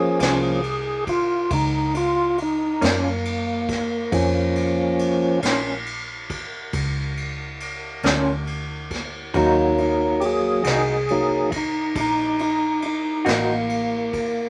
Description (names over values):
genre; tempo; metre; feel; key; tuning
slow blues; 46 BPM (dotted quarters); 12/8; straight; Bb minor; A4 = 440 Hz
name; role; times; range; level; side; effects
tonewheel organ; sustained chords; 0.0-14.5 s; F3 to Ab4; -23 LUFS; equal; overdrive, chorus vibrato, slow rotary speaker
vintage muted fingered electric bass; bass; 0.0-14.5 s; A1 to Gb2; -31 LUFS; equal; none
electric guitar through a small old amp; accompaniment; 0.2-13.5 s; Bb2 to Gb4; -26 LUFS; equal; tremolo
vintage brush drum kit; drums; 0.2-14.3 s; kick drum, ride cymbal, snare drum; -30 LUFS; equal; none
room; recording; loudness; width
light reverb; none; -22 LUFS; mono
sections
0.0-14.5 A section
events
tonewheel organ solo 0.0-14.5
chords
0.0 Bbm; 9.4 Ebm